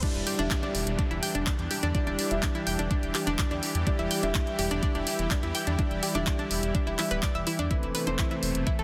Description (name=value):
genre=progressive house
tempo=125 BPM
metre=4/4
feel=straight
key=E minor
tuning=A4 = 440 Hz
part: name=supersaw pad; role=sustained chords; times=0.0-8.8 s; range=C3 to G4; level=-38 LUFS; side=equal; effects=sidechain pumping
part: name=analog pluck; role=arpeggios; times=0.0-8.8 s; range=D4 to G5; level=-35 LUFS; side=equal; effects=chorus, sidechain pumping, delay
part: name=warm concert grand piano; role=stabs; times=0.0-8.8 s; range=E3 to E5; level=-35 LUFS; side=equal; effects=vintage 12-bit sampler grit, sidechain pumping, delay
part: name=electronic kick drum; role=drums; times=0.0-8.8 s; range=none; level=-31 LUFS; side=equal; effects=overdrive
part: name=pop drum kit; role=drums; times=0.0-8.8 s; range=crash cymbal, handclaps, hi-hat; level=-35 LUFS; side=equal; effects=overdrive, sidechain pumping on hats, sidechain pumping on toms, sidechain pumping on cymbals
part: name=riser and downlifter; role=sound effects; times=0.0-3.9 s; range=none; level=-44 LUFS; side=equal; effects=none
part: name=dark detuned saw bass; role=bass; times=0.1-8.8 s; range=D1 to E2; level=-35 LUFS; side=equal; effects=sidechain pumping
room=light reverb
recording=dense, heavily limited modern master, high-pass filter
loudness=-28 LUFS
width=mono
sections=0.0-8.8 A section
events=drop 0.0-8.8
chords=0.0 Em7; 7.7 Amadd9/E